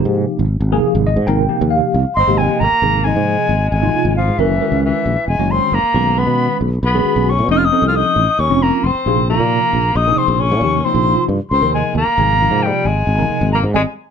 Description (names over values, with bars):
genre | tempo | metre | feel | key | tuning
jazz | 270 BPM (eighths) | 7/8 | straight | Ab major | A4 = 440 Hz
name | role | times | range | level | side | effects
tine electric piano | accompaniment | 0.0-13.8 s | C3 to G5 | -18 LUFS | right 1 dB | overdrive, medium stereo tremolo, phaser
sustaining fretless electric bass | bass | 0.1-13.8 s | Fb1 to B2 | -17 LUFS | equal | none
silver concert flute | melody | 2.1-13.8 s | Fb5 to F6 | -17 LUFS | left 1 dB | slapback echo
warm tenor saxophone | second line | 2.2-13.8 s | Fb3 to F4 | -22 LUFS | left 5 dB | none
room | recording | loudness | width
moderate studio ambience, RT60 0.5 s | dark, warm production, nothing above 10.5 kHz | -13 LUFS | side -7 dB against mid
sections
0.0-2.8 A section; 2.8-14.1 B section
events
band accent 13.7-14.1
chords
0.0 Abmaj9; 2.8 Abadd9; 4.4 Gb9; 6.0 Badd9; 7.5 F7b13; 9.1 Bb9sus4; 10.6 Eb13; 12.2 Abmaj9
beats
0.17 0.39 0.61 0.83 1.05 | 1.28 1.50 1.72 1.94 2.17 2.39 2.61 | 2.83 3.06 3.28 3.50 3.72 3.95 4.17 | 4.39 4.61 4.84 5.06 5.28 5.50 5.73 | 5.95 6.17 6.39 6.62 6.84 7.06 7.29 | 7.51 7.73 7.95 8.18 8.40 8.62 8.85 | 9.07 9.29 9.51 9.74 9.96 10.18 10.40 | 10.63 10.85 11.07 11.29 11.52 11.74 11.96 | 12.19 12.41 12.63 12.85 13.07 13.30 13.52 | 13.74